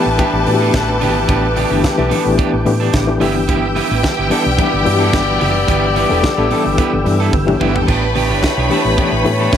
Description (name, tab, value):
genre	disco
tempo	109 BPM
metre	4/4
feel	straight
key	unclear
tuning	A4 = 440 Hz
part	clear symphonic string section	second line	0.0-9.6 s	C#4 to B5	-22 LUFS	equal	none
part	electric guitar at the edge of break-up	accompaniment	0.0-9.5 s	B3 to A4	-22 LUFS	right 10 dB	vibrato effect
part	reed electric piano	accompaniment	0.0-9.6 s	E3 to A4	-18 LUFS	left 4 dB	fast tremolo, tube saturation
part	mellow tonewheel organ	sustained chords	0.0-9.6 s	B4 to E6	-24 LUFS	right 2 dB	chorus vibrato, wide subtle chorus
part	warm horn section	stabs	0.0-9.6 s	G3 to D5	-20 LUFS	left 6 dB	slapback echo
part	hollow-body short-scale fingered electric bass	bass	0.1-9.6 s	E1 to A2	-19 LUFS	right 1 dB	none
part	tight funk drum kit	drums	0.2-9.6 s	crash cymbal, hi-hat, kick drum, snare drum, toms	-20 LUFS	right 1 dB	none
part	congas	percussion	0.2-9.6 s	none	-27 LUFS	left 2 dB	none
room	light reverb, small room ambience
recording	none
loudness	-12 LUFS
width	side -9 dB against mid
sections	0.0-9.6 A section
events	drum fill 7.3-7.9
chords	0.0 A9sus4; 3.2 G6; 7.9 A9sus4